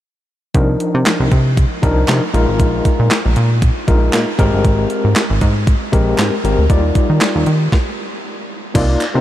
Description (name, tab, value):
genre	early-eighties boogie funk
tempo	117 BPM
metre	4/4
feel	swing 56% on 16ths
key	C minor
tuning	A4 = 440 Hz
part	overdriven tine electric piano	accompaniment	0.5-9.2 s	F3 to D5	-18 LUFS	left 2 dB	medium tremolo
part	plucky analog bass	bass	0.5-9.2 s	G1 to Eb3	-15 LUFS	equal	none
part	clean 12-bit digital drum machine	drums	0.5-9.1 s	crash cymbal, handclaps, hi-hat, kick drum, snare drum	-17 LUFS	equal	overdrive
part	group handclap	percussion	1.1-9.1 s	none	-28 LUFS	right 2 dB	none
room	light reverb, digital ambience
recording	none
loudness	-12 LUFS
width	side -13 dB against mid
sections	0.5-8.8 A section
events	stop 7.7-8.8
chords	0.5 Cm11; 2.3 Bb7sus4; 4.4 Abmaj9; 6.7 Ebmaj9